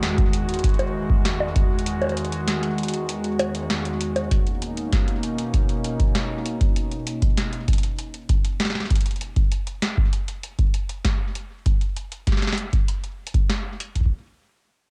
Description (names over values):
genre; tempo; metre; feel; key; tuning
IDM; 98 BPM; 4/4; straight; B major; A4 = 440 Hz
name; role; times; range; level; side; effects
warbly tape-like pad; sustained chords; 0.0-9.2 s; E2 to F#4; -29 LUFS; equal; chorus, built-in reverb, vintage 12-bit sampler grit, sidechain pumping, cassette tape
booming analog drum machine; drums; 0.0-14.1 s; bongos, hi-hat, snare drum; -30 LUFS; equal; cassette tape
electronic kick drum; drums; 0.2-14.1 s; none; -24 LUFS; equal; cassette tape
room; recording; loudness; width
little or no reverb; home recording on cassette; -23 LUFS; mono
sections
0.0-4.3 A section; 4.3-14.1 B section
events
break 1.9-4.3; filter sweep on ambient pad 4.3-9.2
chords
0.0 Emaj9; 4.3 Bmaj9